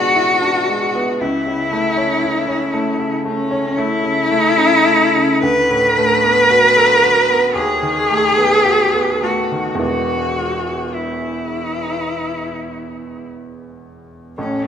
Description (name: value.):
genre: classical, romantic duo for cello and grand piano.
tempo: 52-59 BPM.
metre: 4/4.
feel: rubato.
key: unclear.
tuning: A4 = 439 Hz.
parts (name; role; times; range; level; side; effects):
warm cello; melody; 0.0-14.7 s; C#4 to B4; -15 LUFS; left 1 dB; none.
clear baby grand piano; accompaniment; 0.0-14.7 s; E1 to A4; -20 LUFS; right 1 dB; none.
room: wet recital hall reverb, RT60 1.7 s.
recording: none.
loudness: -13 LUFS.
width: side -8 dB against mid.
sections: 0.0-14.4 A section.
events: none.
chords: 0.0 E7/B; 1.2 A/C#; 5.4 D6; 7.6 B7/D#; 9.8 E.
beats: 0.15 | 1.20 2.23 3.26 4.30 | 5.43 6.49 7.56 8.65 | 9.80 10.94 12.08 13.23 | 14.38.